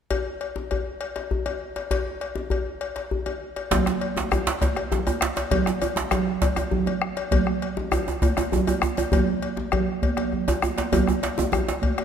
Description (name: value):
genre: west african traditional, West African drum ensemble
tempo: 133 BPM (dotted quarters)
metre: 12/8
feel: straight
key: none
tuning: none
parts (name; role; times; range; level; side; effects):
- cowbell; percussion; 0.1-12.0 s; none; -31 LUFS; left 6 dB; none
- djembe; percussion; 0.1-12.0 s; none; -29 LUFS; left 3 dB; none
- bombo; percussion; 3.7-12.0 s; none; -27 LUFS; left 2 dB; none
- congas; percussion; 3.7-12.0 s; none; -27 LUFS; right 6 dB; none
- djembe; percussion; 3.7-11.8 s; none; -26 LUFS; right 4 dB; none
room: moderate scoring stage reverb, RT60 1.5 s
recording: none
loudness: -22 LUFS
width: side -8 dB against mid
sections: 0.1-3.7 A section; 3.7-12.0 B section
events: drum fill 10.2-10.9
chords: none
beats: | 0.10 0.56 1.01 1.46 | 1.91 2.36 2.81 3.26 | 3.71 4.16 4.61 5.07 | 5.52 5.97 6.42 6.87 | 7.32 7.77 8.22 8.67 | 9.12 9.57 10.02 10.47 | 10.93 11.38 11.83